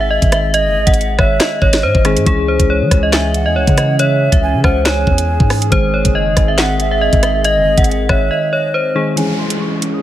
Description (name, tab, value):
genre	hip hop, drill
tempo	139 BPM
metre	4/4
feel	half-time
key	C# harmonic minor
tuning	A4 = 440 Hz
part	metallic FM bell	melody	0.0-10.0 s	G#4 to D#6	-16 LUFS	equal	chorus, low-pass filter, tape echo
part	mellow hollow jazz flute	second line	0.0-9.1 s	D#5 to G#5	-23 LUFS	right 5 dB	tape echo
part	soft electric-piano-like synth keys	accompaniment	0.0-10.0 s	D#3 to G#4	-22 LUFS	left 3 dB	chorus, low-pass filter
part	long sustained 808-style bass	bass	0.0-8.3 s	F#1 to E3	-17 LUFS	equal	none
part	drill drum kit	drums	0.2-9.9 s	handclaps, hi-hat, kick drum, rim click, snare drum	-14 LUFS	equal	none
part	hollow soft pad	sustained chords	2.3-10.0 s	D#3 to G#4	-24 LUFS	equal	chorus, low-pass filter
part	downlifter	sound effects	9.2-10.0 s	none	-24 LUFS	equal	none
room	little or no reverb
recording	none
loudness	-11 LUFS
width	side -12 dB against mid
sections	0.0-9.2 A section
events	break 8.3-9.2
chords	0.0 G#; 2.3 C#m; 5.7 G#; 9.2 C#m